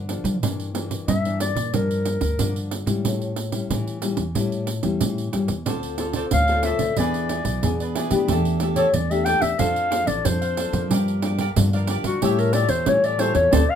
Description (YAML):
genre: samba and choro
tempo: 92 BPM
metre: 4/4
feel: straight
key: unclear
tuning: A4 = 440 Hz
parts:
  - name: nylon-string guitar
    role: accompaniment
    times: 0.0-13.6 s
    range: G2 to A4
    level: -28 LUFS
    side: left 5 dB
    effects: none
  - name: upright bass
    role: bass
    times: 0.0-13.6 s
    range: A1 to G3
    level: -25 LUFS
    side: equal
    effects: none
  - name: pandeiro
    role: percussion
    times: 0.1-13.7 s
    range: none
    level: -26 LUFS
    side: right 6 dB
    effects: none
  - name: mellow clarinet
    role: melody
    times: 1.1-13.8 s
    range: F#4 to G5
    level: -22 LUFS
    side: left 3 dB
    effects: none
  - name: cavaquinho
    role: accompaniment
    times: 5.7-13.6 s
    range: D4 to F5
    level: -30 LUFS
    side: right 5 dB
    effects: none
room: moderate studio ambience, RT60 0.5 s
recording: minimal, uncompressed stereo recording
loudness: -20 LUFS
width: side -8 dB against mid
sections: 0.0-13.8 A section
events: clarinet solo 0.0-13.8; band accent 13.5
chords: 0.4 Em7b5/G; 1.7 Gm7; 3.0 A7; 5.7 Dm7; 7.0 E7; 8.3 A7sus4/E; 9.6 Dm7; 10.9 Gm7; 12.2 A7